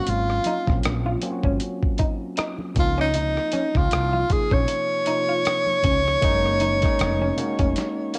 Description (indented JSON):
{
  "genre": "R&B, neo-soul",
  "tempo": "78 BPM",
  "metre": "4/4",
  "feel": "swing 56% on 16ths",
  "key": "Db major",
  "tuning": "A4 = 440 Hz",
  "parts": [
    { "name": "breathy tenor saxophone", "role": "melody", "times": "0.0-8.2 s", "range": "Eb4 to Db5", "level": "-25 LUFS", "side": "equal", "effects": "cassette tape" },
    { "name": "tine electric piano", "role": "accompaniment", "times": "0.0-8.2 s", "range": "C3 to F5", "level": "-32 LUFS", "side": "equal", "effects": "none" },
    { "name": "woody fretless electric bass", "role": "bass", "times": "0.1-7.7 s", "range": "F1 to Db2", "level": "-28 LUFS", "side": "equal", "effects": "transformer saturation, subtle chorus" },
    { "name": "dusty soul sampler-style drum kit", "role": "drums", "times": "0.1-8.2 s", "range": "hi-hat, kick drum, rim click, snare drum", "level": "-27 LUFS", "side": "equal", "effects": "cassette tape" },
    { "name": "congas", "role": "percussion", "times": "0.1-8.2 s", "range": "none", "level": "-40 LUFS", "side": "equal", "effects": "none" },
    { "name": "electric guitar through a small old amp", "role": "second line", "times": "0.5-8.2 s", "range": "Bb3 to F4", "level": "-33 LUFS", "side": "equal", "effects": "none" }
  ],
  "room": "light reverb, digital ambience",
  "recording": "home recording on cassette",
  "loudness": "-22 LUFS",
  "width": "mono",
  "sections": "0.0-8.2 A section",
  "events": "drum fill 7.8-8.2",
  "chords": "0.0 Ab13sus4; 2.8 Dbmaj13; 6.2 Gb6",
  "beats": "| 0.07 0.84 1.61 2.38 | 3.15 3.92 4.68 5.46 | 6.22 6.99 7.76"
}